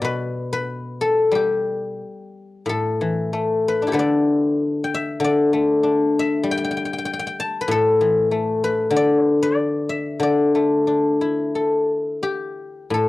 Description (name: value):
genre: chinese traditional, Chinese solo plucked strings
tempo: 84-99 BPM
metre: 4/4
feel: rubato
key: D zhi mode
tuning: A4 = 441 Hz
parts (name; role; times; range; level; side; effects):
- guzheng; solo; 0.0-13.1 s; A2 to A5; -18 LUFS; left 2 dB; cassette tape
room: light reverb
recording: home recording on cassette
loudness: -18 LUFS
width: side -17 dB against mid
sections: 0.0-12.9 A section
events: none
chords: none